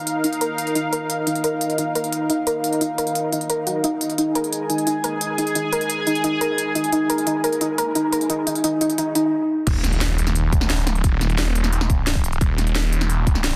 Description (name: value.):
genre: dark technical drum and bass.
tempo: 175 BPM.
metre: 4/4.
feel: straight.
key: unclear.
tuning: A4 = 442 Hz.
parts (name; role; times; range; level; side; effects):
sweeping resonant pad; sustained chords; 0.0-9.3 s; Eb4 to Ab5; -26 LUFS; equal; chorus, sidechain pumping.
drum and bass drum kit; drums; 0.1-13.5 s; crash cymbal, hi-hat, snare drum; -28 LUFS; equal; none.
soft round pluck; arpeggios; 0.2-9.2 s; Eb4 to Bb4; -25 LUFS; equal; subtle chorus, sidechain pumping, dub echo.
snarling distorted saw bass; bass; 9.7-13.6 s; Eb1; -22 LUFS; equal; distortion, tube saturation, sidechain pumping.
electronic kick drum; drums; 9.7-13.3 s; none; -22 LUFS; equal; none.
impact; sound effects; 9.7-11.0 s; none; -32 LUFS; equal; none.
room: wet lush hall reverb, RT60 2.0 s, digital ambience.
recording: dense, heavily limited modern master.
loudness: -21 LUFS.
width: mono.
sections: 0.0-9.7 A section; 9.7-13.6 B section.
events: build-up 0.0-9.7; filter sweep on synth pluck 0.0-9.7; stop 9.3-9.7; drop 9.7-13.6; impact 9.7-11.0.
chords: 0.0 Ebsus2; 9.7 N.C..